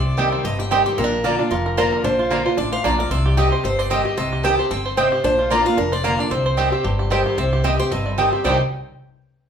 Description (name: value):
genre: bluegrass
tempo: 225 BPM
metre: 4/4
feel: swing 55% on 8ths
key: C minor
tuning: A4 = 440 Hz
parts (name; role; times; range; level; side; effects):
- bluegrass banjo; melody; 0.0-8.6 s; G3 to C5; -25 LUFS; right 2 dB; none
- picked steel-string acoustic guitar; melody; 0.0-8.6 s; G4 to A5; -24 LUFS; left 1 dB; none
- picked steel-string acoustic guitar; accompaniment; 0.0-8.6 s; F2 to G4; -24 LUFS; equal; none
- upright bass; bass; 0.0-8.6 s; F1 to C2; -23 LUFS; equal; none
- mandolin; stabs; 0.2-8.6 s; Bb3 to Bb5; -22 LUFS; right 2 dB; none
room: wet large studio reverb, RT60 0.8 s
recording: band playing live in one room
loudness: -17 LUFS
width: side -8 dB against mid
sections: 0.0-7.4 A section; 7.4-8.4 B section; 8.4-9.5 C section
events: none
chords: 0.0 Cm; 1.0 Bb; 3.1 Cm; 5.2 Bb; 6.3 Cm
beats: 0.18 0.45 0.71 | 0.98 1.25 1.51 1.78 | 2.04 2.31 2.58 2.84 | 3.11 3.38 3.64 3.91 | 4.18 4.44 4.71 4.98 | 5.25 5.51 5.78 6.05 | 6.31 6.58 6.85 7.11 | 7.38 7.65 7.91 8.18 | 8.45